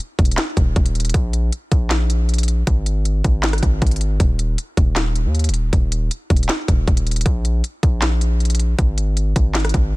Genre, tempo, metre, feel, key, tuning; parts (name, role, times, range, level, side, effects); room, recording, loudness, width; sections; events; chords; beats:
hip hop, trap; 157 BPM; 4/4; half-time; A4 = 440 Hz
trap drum kit; drums; 0.0-9.8 s; handclaps, hi-hat, kick drum, rim click, snare drum; -18 LUFS; equal; vintage 12-bit sampler grit
distorted 808-style bass; bass; 0.2-9.9 s; Eb1 to Eb2; -18 LUFS; equal; distortion
digital ambience; dense, heavily limited modern master; -16 LUFS; side -21 dB against mid
0.0-10.0 A section
0.00 0.38 0.76 | 1.14 1.52 1.91 2.29 | 2.67 3.05 3.44 3.82 | 4.20 4.58 4.96 5.35 | 5.73 6.11 6.49 6.88 | 7.26 7.64 8.02 8.40 | 8.79 9.17 9.55 9.93